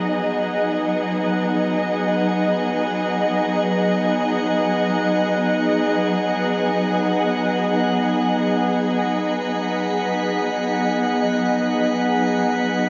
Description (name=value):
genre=ambient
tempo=free time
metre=none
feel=none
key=B major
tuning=A4 = 438 Hz
part: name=dark studio string section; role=sustained chords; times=0.0-12.9 s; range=F#3 to D#5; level=-21 LUFS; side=equal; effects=none
part: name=drifting glass-harmonics texture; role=texture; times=0.0-12.9 s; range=F#5 to B6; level=-30 LUFS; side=equal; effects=chorus, built-in reverb
room=wet huge ambient reverb, RT60 7.6 s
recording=in a vast, echoing space, nothing above 8.0 kHz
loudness=-20 LUFS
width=mono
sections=0.0-12.9 A section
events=fade-in on synth texture 0.0-12.9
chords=0.0 B6